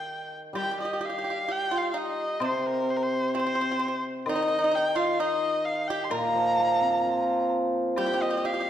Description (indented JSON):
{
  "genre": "chinese traditional, Chinese chamber ensemble",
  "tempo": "65 BPM",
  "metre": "2/4",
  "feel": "rubato",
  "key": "G jue mode",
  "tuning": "A4 = 439 Hz",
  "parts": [
    { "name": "warm erhu", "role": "melody", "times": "0.0-8.7 s", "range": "Bb4 to C6", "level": "-29 LUFS", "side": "left 1 dB", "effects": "none" },
    { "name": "hammered dulcimer", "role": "accompaniment", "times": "0.0-8.7 s", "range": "Bb2 to F4", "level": "-27 LUFS", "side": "equal", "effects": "none" },
    { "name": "pipa", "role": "second line", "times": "0.6-8.7 s", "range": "C4 to Bb4", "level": "-32 LUFS", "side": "right 4 dB", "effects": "none" },
    { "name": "woodblock", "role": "percussion", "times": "0.6-8.2 s", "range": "none", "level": "-40 LUFS", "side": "left 4 dB", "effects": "none" }
  ],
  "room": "wet recital hall reverb, RT60 1.8 s",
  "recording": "dark, warm production",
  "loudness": "-24 LUFS",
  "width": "side -10 dB against mid",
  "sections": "0.6-8.7 A section",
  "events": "none",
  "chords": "none",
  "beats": "| 0.56 1.50 | 2.42 3.34 | 4.27 5.18 | 6.11 7.03 | 7.96"
}